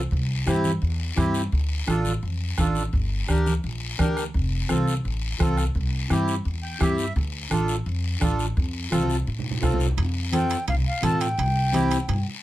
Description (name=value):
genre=latin, cumbia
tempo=170 BPM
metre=4/4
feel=straight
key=F major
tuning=A4 = 439 Hz
part: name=upright bass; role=bass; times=0.0-12.2 s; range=F1 to A2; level=-26 LUFS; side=equal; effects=none
part: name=bombo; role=percussion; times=0.1-9.8 s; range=none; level=-26 LUFS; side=equal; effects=none
part: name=guiro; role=percussion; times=0.1-12.4 s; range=none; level=-36 LUFS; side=left 6 dB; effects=none
part: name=accordion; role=accompaniment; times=0.5-12.0 s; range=C4 to G5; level=-26 LUFS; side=equal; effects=none
part: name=congas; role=percussion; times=0.5-12.3 s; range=none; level=-28 LUFS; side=right 1 dB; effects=none
part: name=timbales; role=percussion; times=10.0-12.3 s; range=none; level=-35 LUFS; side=right 6 dB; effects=none
part: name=jazz flute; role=melody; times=10.3-12.3 s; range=F5 to A5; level=-27 LUFS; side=equal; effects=none
room=light reverb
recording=close, detailed microphones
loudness=-22 LUFS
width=side -15 dB against mid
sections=0.0-10.0 A section; 10.0-12.4 B section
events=accordion fill 6.5-7.2; drum fill 8.9-10.0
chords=0.1 C; 1.5 Dm; 2.9 Gm; 4.3 F; 5.8 C; 7.2 Dm; 8.6 F; 11.4 C